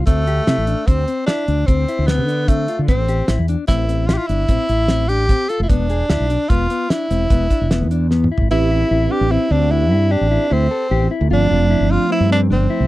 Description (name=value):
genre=progressive instrumental, band music in an uneven meter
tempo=150 BPM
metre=7/4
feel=straight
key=A minor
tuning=A4 = 440 Hz
part: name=mellow electric guitar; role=arpeggios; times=0.0-12.9 s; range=B3 to A4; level=-24 LUFS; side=left 8 dB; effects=none
part: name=fretless electric bass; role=bass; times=0.0-12.9 s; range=E1 to D3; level=-18 LUFS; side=equal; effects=lush chorus
part: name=clear tenor saxophone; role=melody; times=0.1-12.9 s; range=A3 to A4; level=-20 LUFS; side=right 1 dB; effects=none
part: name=cloth-damped thuddy drum kit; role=drums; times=0.1-8.5 s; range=hi-hat, kick drum, snare drum, toms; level=-16 LUFS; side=equal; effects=none
part: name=mellow tine electric piano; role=accompaniment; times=8.5-12.9 s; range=F3 to B4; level=-22 LUFS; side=right 5 dB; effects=ensemble chorus
room=little or no reverb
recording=dry, close 1970s-style studio recording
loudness=-14 LUFS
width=side -17 dB against mid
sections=0.0-8.5 A section; 8.5-12.9 B section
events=drum fill 8.1-8.5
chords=0.1 D7sus2; 2.9 Am; 5.7 E7(no3); 8.5 Am7; 11.3 Fmaj7